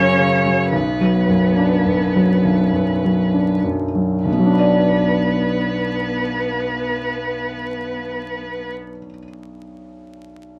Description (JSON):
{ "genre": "classical, slow romantic movement for piano trio", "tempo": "31-38 BPM (dotted quarters)", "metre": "6/8", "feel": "rubato", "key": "B minor", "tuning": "A4 = 438 Hz", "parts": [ { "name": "rich violin", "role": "melody", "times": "0.0-8.7 s", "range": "B4 to C#5", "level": "-27 LUFS", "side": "equal", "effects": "none" }, { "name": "warm cello", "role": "second line", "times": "0.0-8.7 s", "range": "B3 to C#4", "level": "-30 LUFS", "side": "equal", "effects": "none" }, { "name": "clear concert grand piano", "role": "accompaniment", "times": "0.0-10.6 s", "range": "B1 to D5", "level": "-20 LUFS", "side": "equal", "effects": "none" } ], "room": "moderate studio reverb, RT60 0.7 s", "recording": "vinyl crackle", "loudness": "-18 LUFS", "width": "mono", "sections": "0.0-4.3 A section; 4.3-7.9 B section", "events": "slowing down 0.0-4.3", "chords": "0.0 F#5; 0.7 Bm", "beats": "| 0.72 2.43 | 4.26 6.10" }